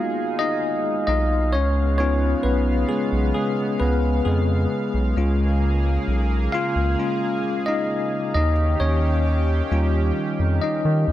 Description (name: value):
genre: R&B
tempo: 66 BPM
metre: 4/4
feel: straight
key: unclear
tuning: A4 = 439 Hz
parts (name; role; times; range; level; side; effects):
- bell-like tine electric piano; accompaniment; 0.0-11.1 s; G3 to E#5; -23 LUFS; left 2 dB; medium stereo tremolo
- chorused pulse-width pad; sustained chords; 0.0-11.1 s; C#3 to E#5; -28 LUFS; right 2 dB; none
- round analog bass; bass; 1.1-11.1 s; B1 to D#3; -20 LUFS; equal; none
room: light reverb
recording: none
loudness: -19 LUFS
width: side -13 dB against mid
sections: 0.0-11.1 A section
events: tine electric piano solo 0.0-11.1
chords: 0.0 G#m7; 1.5 C#7; 5.2 A#m7; 8.3 D#9